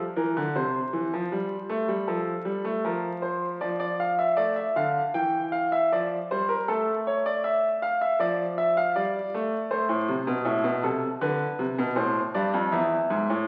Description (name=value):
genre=classical, baroque-style two-part invention for grand piano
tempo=79 BPM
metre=4/4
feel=straight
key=D minor from 3.6 s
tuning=A4 = 441 Hz
part: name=clear baby grand piano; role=solo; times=0.2-13.5 s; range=E2 to G5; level=-26 LUFS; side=equal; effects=none
room=wet recital hall reverb, RT60 1.5 s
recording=very old 78 rpm record, vinyl crackle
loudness=-26 LUFS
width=mono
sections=0.0-3.6 A section; 3.6-13.5 B section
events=none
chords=0.0 Gm (rootless); 0.5 C5; 2.1 F; 3.6 Dm/F; 5.2 Edim; 6.7 A; 8.2 Dm/F; 9.7 Am; 11.2 Bdim; 12.7 E